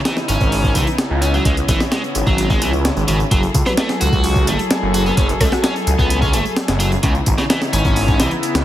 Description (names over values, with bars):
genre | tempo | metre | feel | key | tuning
breakbeat, breaks | 129 BPM | 4/4 | straight | F# minor | A4 = 443 Hz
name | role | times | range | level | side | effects
warm studio string section | sustained chords | 0.0-8.6 s | C#3 to A4 | -23 LUFS | left 1 dB | vintage 12-bit sampler grit, sidechain pumping
biting overdriven guitar | riff | 0.1-8.3 s | C#3 to F#4 | -22 LUFS | equal | tube saturation, ping-pong delay
breakbeat sampler-style drum kit | drums | 0.1-8.6 s | hi-hat, kick drum, snare drum | -18 LUFS | equal | studio reverb
tambourine | drums | 0.1-8.5 s | none | -30 LUFS | right 2 dB | overdrive, studio reverb
phased detuned saw bass | bass | 0.3-8.6 s | F#1 to C#2 | -18 LUFS | equal | phaser
mallet-like synth pluck | melody | 3.7-6.2 s | F#4 to B4 | -26 LUFS | equal | chorus, telephone sound, ping-pong delay
room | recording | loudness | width
light reverb | heavily compressed radio sound, multiband compression | -14 LUFS | side -12 dB against mid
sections
0.0-8.6 A section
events
none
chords
0.0 C#m9; 3.3 F#m9; 7.0 C#m9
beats
0.06 0.52 0.99 | 1.45 1.92 2.38 2.85 | 3.31 3.78 4.24 4.71 | 5.17 5.64 6.10 6.57 | 7.03 7.50 7.96 8.43